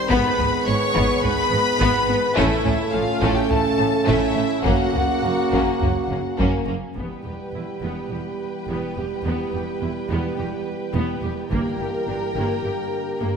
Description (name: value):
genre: cinematic, epic orchestral film score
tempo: 105 BPM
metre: 4/4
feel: straight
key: unclear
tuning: A4 = 441 Hz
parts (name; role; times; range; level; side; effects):
- warm symphonic violin section; melody; 0.0-13.4 s; E5 to C#6; -28 LUFS; left 4 dB; none
- rich symphonic viola section; accompaniment; 0.0-13.4 s; Bb3 to C#5; -28 LUFS; right 1 dB; none
- clear trombone section; sustained chords; 0.0-13.4 s; C#3 to A#3; -28 LUFS; right 7 dB; none
- mellow French horn section; sustained chords; 0.0-13.4 s; Bb3 to B4; -27 LUFS; left 1 dB; none
- warm symphonic violin section; second line; 0.1-13.4 s; A3 to B4; -27 LUFS; left 3 dB; none
- rich symphonic cello section; bass; 0.1-13.3 s; E2 to A2; -29 LUFS; right 3 dB; none
- rich symphonic double bass section; bass; 0.1-13.3 s; E1 to A1; -30 LUFS; right 3 dB; none
- taiko ensemble; drums; 0.1-8.1, 11.5-12.6 s; none; -27 LUFS; left 1 dB; none
room: wet scoring stage reverb, RT60 2.1 s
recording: none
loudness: -19 LUFS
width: side -6 dB against mid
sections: 0.0-7.0 A section; 7.0-13.4 B section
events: none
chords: 0.1 G#m; 2.4 A; 4.7 F#; 7.0 Em; 11.5 Gm